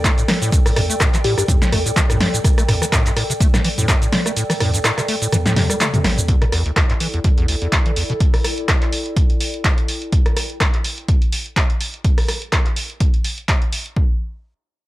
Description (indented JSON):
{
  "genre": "acid house",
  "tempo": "125 BPM",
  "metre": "4/4",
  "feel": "swing 55% on 16ths",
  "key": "E minor",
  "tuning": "A4 = 441 Hz",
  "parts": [
    { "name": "acid bass, square", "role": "riff", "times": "0.0-8.1 s", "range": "A1 to A3", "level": "-22 LUFS", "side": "equal", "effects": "tube saturation, analog chorus, analog delay" },
    { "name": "electronic kick drum", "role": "drums", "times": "0.0-14.1 s", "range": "none", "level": "-17 LUFS", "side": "equal", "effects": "none" },
    { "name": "punchy analog drum machine", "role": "drums", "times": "0.0-13.9 s", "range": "handclaps, hi-hat, rim click, shaker, snare drum, toms", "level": "-20 LUFS", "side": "equal", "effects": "none" },
    { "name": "warbly tape-like pad", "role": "texture", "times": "0.0-10.1 s", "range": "E4 to G5", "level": "-28 LUFS", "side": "equal", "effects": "chorus, built-in reverb, sidechain pumping" },
    { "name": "bell-like FM electric piano", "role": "melody", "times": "1.2-1.4 s", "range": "G4", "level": "-24 LUFS", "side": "left 3 dB", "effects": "chorus, analog delay" }
  ],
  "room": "little or no reverb",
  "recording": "dry, gritty hardware recording",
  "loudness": "-15 LUFS",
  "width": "side -17 dB against mid",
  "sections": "0.0-6.3 A section; 6.3-14.0 B section",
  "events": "drop 0.0-6.3; kick drops out 4.4-6.3; drum fill 5.8-6.3",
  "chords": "0.0 A7(no3); 6.3 Em7; 14.0 N.C."
}